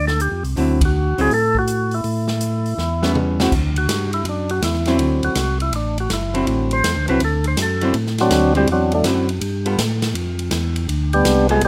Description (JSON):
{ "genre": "soul jazz organ trio", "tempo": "163 BPM", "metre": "4/4", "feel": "swing 65% on 8ths", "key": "D mixolydian", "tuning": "A4 = 445 Hz", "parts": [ { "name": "percussive tonewheel organ", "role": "melody", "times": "0.0-11.7 s", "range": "D3 to C5", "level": "-22 LUFS", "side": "equal", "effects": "slow rotary speaker" }, { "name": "tonewheel organ", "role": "bass", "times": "0.0-11.7 s", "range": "F#1 to A2", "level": "-23 LUFS", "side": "equal", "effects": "overdrive, slow rotary speaker" }, { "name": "swinging big-band drum kit", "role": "drums", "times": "0.1-11.7 s", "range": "crash cymbal, hi-hat, kick drum, ride cymbal, snare drum, toms", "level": "-27 LUFS", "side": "equal", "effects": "none" }, { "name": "archtop guitar, miked and amplified", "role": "accompaniment", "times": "0.6-11.6 s", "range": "D3 to A4", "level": "-22 LUFS", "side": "equal", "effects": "none" } ], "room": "light reverb", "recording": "none", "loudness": "-19 LUFS", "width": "mono", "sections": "0.0-3.5 A section; 3.5-11.7 B section", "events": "band accent 0.8; drum fill 2.8-3.5; tonewheel organ solo 3.5-11.7", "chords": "0.0 G7sus2; 0.6 D9; 2.0 A9; 3.5 D9; 9.4 G9" }